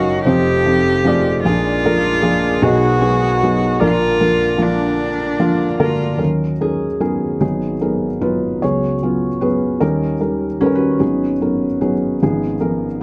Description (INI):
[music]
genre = acoustic folk-pop ballad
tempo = 50 BPM (dotted quarters)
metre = 6/8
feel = straight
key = Eb minor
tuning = A4 = 439 Hz
[part]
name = felt-muted upright piano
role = melody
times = 0.0-13.0 s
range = F1 to F5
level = -19 LUFS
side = equal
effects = none
[part]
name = warm cello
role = second line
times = 0.0-6.2 s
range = D4 to G4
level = -22 LUFS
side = equal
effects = none
[part]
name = pedal harmonium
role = sustained chords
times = 0.0-6.2 s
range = F2 to F5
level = -28 LUFS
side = equal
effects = none
[part]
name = concert harp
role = arpeggios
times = 0.0-13.0 s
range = Db4 to Db6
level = -25 LUFS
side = equal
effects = analog delay
[sound]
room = wet studio reverb, RT60 0.5 s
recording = dark, warm production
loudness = -17 LUFS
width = mono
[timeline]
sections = 0.0-6.2 A section; 6.2-13.0 B section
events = none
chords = 0.2 F7; 1.4 Bb7; 2.6 Abm7/Cb; 3.8 Bb; 6.2 Ebm7; 9.8 Eb7